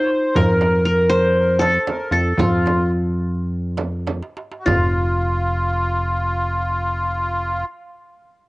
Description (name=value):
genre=Arabic maqam ensemble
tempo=97-121 BPM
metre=4/4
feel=straight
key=F maqam hijaz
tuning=A4 = 441 Hz
part: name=qanun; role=melody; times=0.0-7.6 s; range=Eb4 to C5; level=-19 LUFS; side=left 1 dB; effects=cassette tape
part: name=accordion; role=second line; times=0.0-7.6 s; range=F4 to Db5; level=-24 LUFS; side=equal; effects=light tremolo tuning, cassette tape
part: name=plucky analog bass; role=bass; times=0.4-7.6 s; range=F1 to F2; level=-21 LUFS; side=equal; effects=none
part: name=darbuka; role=percussion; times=0.4-5.0 s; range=none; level=-27 LUFS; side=right 1 dB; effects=none
part: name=frame drum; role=percussion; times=0.4-5.0 s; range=none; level=-25 LUFS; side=right 3 dB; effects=none
room=small room ambience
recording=home recording on cassette, nothing above 10.4 kHz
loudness=-17 LUFS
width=side -22 dB against mid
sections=0.0-4.7 A section; 4.7-8.5 B section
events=slowing down 0.4-4.7; drum fill 4.1-4.7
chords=none